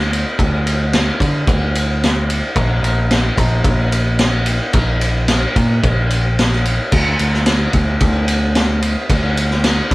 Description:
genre	folk rock and heartland rock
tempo	110 BPM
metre	4/4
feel	straight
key	unclear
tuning	A4 = 437 Hz
part	picked electric bass	bass	0.0-9.9 s	Bb1 to D3	-17 LUFS	equal	none
part	vintage drum kit	drums	0.1-9.9 s	crash cymbal, kick drum, ride cymbal, snare drum	-16 LUFS	equal	none
room	light reverb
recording	band playing live in one room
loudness	-13 LUFS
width	side -20 dB against mid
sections	0.0-9.9 A section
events	none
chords	none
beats	| 0.38 0.92 1.47 2.01 | 2.56 3.10 3.64 4.19 | 4.73 5.28 5.82 6.37 | 6.91 7.46 8.00 8.55 | 9.09 9.64

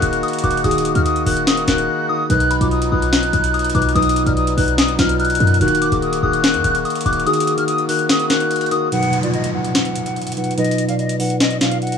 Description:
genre	hip hop, trap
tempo	145 BPM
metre	4/4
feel	half-time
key	unclear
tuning	A4 = 440 Hz
part	hollow concert flute	melody	0.0-12.0 s	D5 to Gb6	-21 LUFS	left 2 dB	low-pass filter, digital delay
part	soft synth bell	second line	0.0-8.9 s	B5 to Gb6	-25 LUFS	left 3 dB	chorus, digital delay
part	muted felt-like synth keys	accompaniment	0.0-12.0 s	B2 to D5	-20 LUFS	right 2 dB	chorus, low-pass filter
part	accordion	sustained chords	0.0-8.9 s	Eb3 to Gb4	-25 LUFS	left 4 dB	none
part	short 808-style bass	bass	0.0-7.3 s	Eb1 to F#2	-20 LUFS	left 1 dB	none
part	trap drum kit	drums	0.0-12.0 s	hi-hat, snare drum	-21 LUFS	left 2 dB	none
part	downlifter	sound effects	8.9-12.0 s	none	-27 LUFS	left 3 dB	none
room	little or no reverb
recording	none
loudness	-15 LUFS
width	side -7 dB against mid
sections	0.0-8.9 A section; 8.9-12.0 B section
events	break 1.9-2.3; kick muted 7.3-8.9, 8.9-12.0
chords	0.0 Ebm; 2.3 B; 5.6 Ebm; 8.9 B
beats	0.23 | 0.65 1.06 1.47 1.89 | 2.30 2.71 3.13 3.54 | 3.96 4.37 4.78 5.20 | 5.61 6.02 6.44 6.85 | 7.26 7.68 8.09 8.51 | 8.92 9.33 9.75 10.16 | 10.58 10.99 11.40 11.82

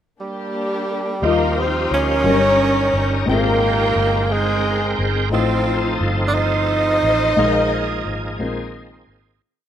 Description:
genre	slow gospel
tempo	59 BPM (dotted quarters)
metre	6/8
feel	straight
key	Eb major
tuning	A4 = 438 Hz
part	breathy tenor saxophone	melody	0.2-8.7 s	G3 to Eb4	-20 LUFS	right 3 dB	none
part	warm studio string section	melody	0.2-8.7 s	Bb3 to Eb5	-24 LUFS	left 4 dB	none
part	dark grand piano	accompaniment	1.2-9.4 s	G2 to G5	-23 LUFS	left 4 dB	none
part	bright tonewheel organ	sustained chords	1.2-9.4 s	Eb3 to G5	-23 LUFS	right 2 dB	slow rotary speaker, overdrive, chorus vibrato
part	vintage muted fingered electric bass	bass	1.2-9.4 s	G1 to Eb2	-23 LUFS	equal	none
room	light reverb, small room ambience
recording	rough home demo mix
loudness	-16 LUFS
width	side -10 dB against mid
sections	0.0-1.2 pickup bar; 1.2-9.4 verse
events	fade-out 7.4-9.4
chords	0.0 Gm; 1.2 Ebmaj9; 2.3 Eb7/G; 3.3 Abmaj9; 5.3 F7; 7.4 Bb7sus4; 8.4 Bb9sus4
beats	0.20 | 1.23 2.25 | 3.27 4.30 | 5.32 6.34 | 7.37 8.39

